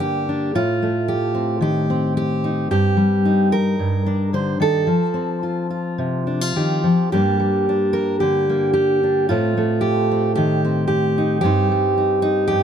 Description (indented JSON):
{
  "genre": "folk, solo fingerstyle acoustic guitar",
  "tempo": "111 BPM",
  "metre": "4/4",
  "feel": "rubato",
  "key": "G minor",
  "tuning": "A4 = 438 Hz",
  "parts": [
    { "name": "fingerpicked steel-string acoustic guitar", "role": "solo", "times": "0.0-12.6 s", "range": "G2 to C5", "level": "-17 LUFS", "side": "equal", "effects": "none" }
  ],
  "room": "little or no reverb",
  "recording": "close, detailed microphones",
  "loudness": "-17 LUFS",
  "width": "side -8 dB against mid",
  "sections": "0.0-7.1 A section; 7.1-12.6 A section",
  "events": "none",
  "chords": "0.0 Gm; 0.5 Am7b5; 2.7 Cm9/G; 4.9 F; 7.1 Gm; 9.3 Am7b5; 11.4 Cm/G",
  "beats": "0.00 | 0.54 1.07 1.61 2.15 | 2.70 3.24 3.79 4.33 | 4.87 5.42 5.98 6.56 | 7.12 7.67 8.22 8.76 | 9.30 9.84 10.37 10.91 | 11.44 11.98 12.52"
}